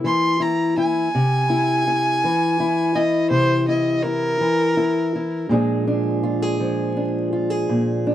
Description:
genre	acoustic country blues, solo or duo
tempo	55 BPM (dotted quarters)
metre	12/8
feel	straight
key	unclear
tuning	A4 = 440 Hz
part	fingerpicked steel-string acoustic guitar	accompaniment	0.0-8.1 s	Bb2 to Ab4	-19 LUFS	left 1 dB	none
part	clear fiddle	melody	0.1-5.5 s	Bb4 to C6	-21 LUFS	right 1 dB	none
room	little or no reverb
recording	dry, close 1970s-style studio recording, vinyl crackle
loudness	-18 LUFS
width	side -11 dB against mid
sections	0.0-8.1 A section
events	fiddle solo 0.0-8.1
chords	0.0 C7; 5.5 Bb7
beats	0.02 | 1.12 2.21 3.30 4.40 | 5.50 6.59 7.69

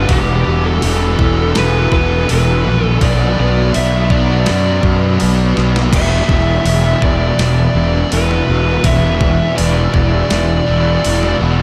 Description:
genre	rock, shoegaze and dream pop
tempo	82 BPM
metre	4/4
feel	straight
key	unclear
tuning	A4 = 441 Hz
part	fuzz lead guitar	melody	0.0-11.4 s	G4 to E5	-21 LUFS	equal	distortion, tape echo
part	fuzz guitar	riff	0.0-11.6 s	E2 to B3	-19 LUFS	equal	distortion, ensemble chorus
part	fuzz fingered electric bass	bass	0.0-11.6 s	E1 to F#2	-17 LUFS	equal	overdrive
part	detuned 8-bit digital drum machine	drums	0.1-11.3 s	crash cymbal, hi-hat, kick drum, snare drum	-21 LUFS	equal	none
room	wet huge ambient reverb, RT60 9.1 s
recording	dreamy mix soaked in reverb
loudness	-14 LUFS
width	mono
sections	0.0-5.9 A section; 5.9-11.6 B section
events	drum fill 5.6-5.9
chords	0.1 E5; 3.0 Bm; 5.9 E5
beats	| 0.08 0.81 1.55 2.28 | 3.01 3.74 4.47 5.20 | 5.93 6.66 7.39 8.12 | 8.85 9.58 10.31 11.04

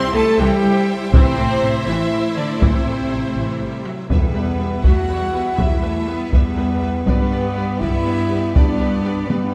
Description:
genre	cinematic, epic orchestral film score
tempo	81 BPM (dotted quarters)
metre	6/8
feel	straight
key	E minor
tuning	A4 = 444 Hz
part	clear symphonic violin section	melody	0.0-9.4 s	C5 to C6	-36 LUFS	equal	none
part	mellow flute section	second line	0.0-3.9 s	C5 to C6	-32 LUFS	equal	none
part	rich symphonic violin section	second line	0.0-9.5 s	B4 to C6	-36 LUFS	equal	none
part	rich studio viola section	accompaniment	0.0-9.4 s	E3 to B4	-32 LUFS	equal	none
part	clear symphonic string section	sustained chords	0.0-9.5 s	G3 to E5	-31 LUFS	equal	none
part	mellow French horn section	sustained chords	0.0-9.5 s	B3 to C5	-24 LUFS	equal	none
part	rich symphonic cello section	bass	0.0-9.5 s	C3 to C4	-27 LUFS	equal	none
part	rich symphonic double bass section	bass	0.1-9.5 s	A1 to G2	-27 LUFS	equal	none
part	taiko ensemble	drums	1.1-9.5 s	none	-20 LUFS	equal	none
part	timpani	percussion	4.1-4.8 s	E2	-26 LUFS	equal	none
room	moderate scoring stage reverb, RT60 1.8 s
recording	none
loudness	-18 LUFS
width	mono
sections	0.0-4.1 A section; 4.1-9.5 B section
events	drum fill 9.3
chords	0.0 C; 1.1 Am; 4.1 Em; 7.1 G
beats	0.40 | 1.14 1.88 | 2.62 3.36 | 4.11 4.85 | 5.59 6.33 | 7.07 7.81 | 8.55 9.29

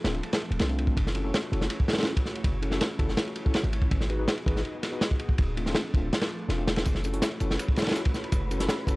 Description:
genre	drum and bass, jungle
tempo	163 BPM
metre	4/4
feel	straight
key	unclear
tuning	A4 = 440 Hz
part	airy breathy pad	sustained chords	0.0-9.0 s	F3 to D#5	-38 LUFS	equal	chorus
part	mellow tine electric piano	stabs	0.0-9.0 s	A3 to B4	-35 LUFS	left 1 dB	fast stereo tremolo, dub echo
part	warm 808-style bass	bass	0.0-9.0 s	D1 to C2	-29 LUFS	equal	none
part	crunchy breakbeat drum kit	drums	0.0-9.0 s	kick drum, ride cymbal, snare drum	-26 LUFS	equal	none
part	breakbeat sampler-style drum kit	drums	6.9-9.0 s	hi-hat, snare drum, tambourine	-40 LUFS	left 1 dB	high-pass filter on perc, high-pass filter on hats, high-pass filter on snare
part	wind-like tuned noise texture	texture	7.4-9.0 s	B4 to B5	-42 LUFS	equal	built-in reverb
room	small room ambience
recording	dry, gritty hardware recording, transformer saturation, cassette tape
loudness	-25 LUFS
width	side -22 dB against mid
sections	0.0-9.0 A section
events	none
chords	0.0 Dm7; 1.0 F#m7; 3.9 G#m7; 5.4 Dm7; 6.9 F#m7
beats	0.23 0.60 | 0.97 1.33 1.70 2.07 | 2.44 2.81 3.17 3.54 | 3.91 4.28 4.65 5.01 | 5.38 5.75 6.12 6.49 | 6.86 7.22 7.59 7.96 | 8.33 8.70

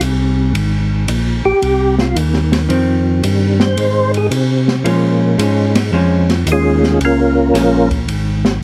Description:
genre	soul jazz organ trio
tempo	112 BPM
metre	4/4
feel	swing 68% on 8ths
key	F minor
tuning	A4 = 439 Hz
part	tonewheel organ	bass	0.0-8.6 s	Ab1 to C3	-18 LUFS	equal	overdrive, chorus vibrato, slow rotary speaker
part	open jazz drum kit	drums	0.0-8.5 s	hi-hat, kick drum, ride cymbal, snare drum	-23 LUFS	equal	none
part	percussive tonewheel organ	melody	1.5-7.9 s	Ab3 to C5	-16 LUFS	equal	slow rotary speaker, chorus vibrato
part	vintage hollow-body jazz guitar	accompaniment	2.7-7.9 s	Eb3 to Db4	-19 LUFS	equal	none
room	moderate club reverb, RT60 0.5 s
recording	heavily compressed radio sound, multiband compression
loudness	-14 LUFS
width	mono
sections	0.0-8.6 A section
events	tonewheel organ solo 0.0-8.6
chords	0.0 Fm7; 4.9 Bbm7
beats	0.01 | 0.55 1.09 1.62 2.16 | 2.70 3.24 3.78 4.31 | 4.85 5.39 5.93 6.47 | 7.00 7.54 8.08 8.62

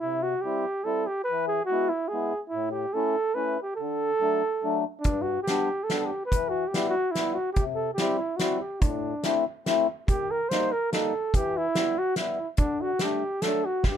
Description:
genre	alpine folk, alpine dance band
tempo	143 BPM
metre	3/4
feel	swing 54% on 8ths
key	unclear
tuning	A4 = 440 Hz
part	mellow flugelhorn	melody	0.0-14.0 s	D4 to C5	-27 LUFS	right 1 dB	none
part	mellow accordion	accompaniment	0.0-14.0 s	G2 to E4	-29 LUFS	left 4 dB	none
part	loose indie drum kit	drums	5.0-14.0 s	hi-hat, kick drum, snare drum	-28 LUFS	equal	none
room	light reverb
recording	minimal, uncompressed stereo recording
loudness	-24 LUFS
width	side -9 dB against mid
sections	0.0-14.0 A section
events	none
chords	0.0 C; 1.3 E; 2.5 A; 3.8 D; 5.1 G; 6.3 Em; 7.6 C; 8.8 Am; 10.1 Eb; 11.3 Em; 12.6 Dsus4; 13.4 D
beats	| 0.02 0.44 0.86 | 1.28 1.70 2.12 | 2.54 2.96 3.38 | 3.80 4.22 4.64 | 5.06 5.48 5.91 | 6.33 6.74 7.16 | 7.58 7.99 8.41 | 8.82 9.24 9.66 | 10.09 10.51 10.93 | 11.35 11.77 12.18 | 12.60 13.02 13.44 | 13.86

